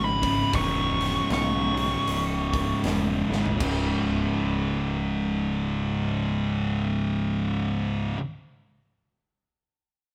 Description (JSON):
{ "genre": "stoner and doom metal", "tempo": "78 BPM", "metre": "4/4", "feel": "swing 60% on 8ths", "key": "unclear", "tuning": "A4 = 440 Hz", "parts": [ { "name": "fuzz lead guitar", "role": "melody", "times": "0.0-2.8 s", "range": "B5 to C#6", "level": "-30 LUFS", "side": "equal", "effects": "distortion" }, { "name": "string machine, cellos", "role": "sustained chords", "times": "0.0-7.4 s", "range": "none", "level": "barely audible", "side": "none", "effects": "none" }, { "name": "thick fuzz guitar", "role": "riff", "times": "0.0-8.2 s", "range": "C#2 to C#3", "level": "-31 LUFS", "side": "equal", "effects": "distortion" }, { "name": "thick fuzz guitar", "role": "riff", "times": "0.0-8.2 s", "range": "C#2 to C#3", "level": "-31 LUFS", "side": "equal", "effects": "distortion" }, { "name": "growling picked electric bass", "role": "bass", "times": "0.0-8.1 s", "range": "C#1 to B1", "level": "-34 LUFS", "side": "equal", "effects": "overdrive" }, { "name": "big rock drum kit", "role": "drums", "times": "0.2-3.8 s", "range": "crash cymbal, hi-hat, kick drum, snare drum, toms", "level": "-34 LUFS", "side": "equal", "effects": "none" } ], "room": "light reverb", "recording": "band playing live in one room", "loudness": "-26 LUFS", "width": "mono", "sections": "0.0-3.6 A section; 3.6-6.7 B section", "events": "lead electric guitar solo 0.0-3.6; drum fill 3.2-3.6", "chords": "0.0 C#m; 3.6 C#5", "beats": "| 0.53 1.30 2.06 2.83 | 3.60 4.36 5.13 5.90" }